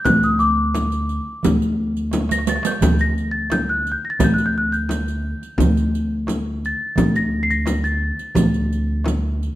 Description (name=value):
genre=Arabic maqam ensemble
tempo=87 BPM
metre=4/4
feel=straight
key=D maqam hijaz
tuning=A4 = 439 Hz
part: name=large celesta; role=melody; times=0.0-9.1 s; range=D6 to C7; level=-22 LUFS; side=left 1 dB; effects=none
part: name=upright bass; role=bass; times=0.1-9.5 s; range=D2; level=-21 LUFS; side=equal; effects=none
part: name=darbuka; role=percussion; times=0.1-9.5 s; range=none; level=-26 LUFS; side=right 3 dB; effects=none
part: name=frame drum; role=percussion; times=0.1-9.2 s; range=none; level=-23 LUFS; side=left 1 dB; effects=none
part: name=riq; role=percussion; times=0.1-9.5 s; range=none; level=-28 LUFS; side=right 7 dB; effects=none
room=moderate recital hall reverb, RT60 1.5 s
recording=minimal, uncompressed stereo recording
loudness=-17 LUFS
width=side -14 dB against mid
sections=0.0-9.6 A section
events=drum fill 2.1-2.8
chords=none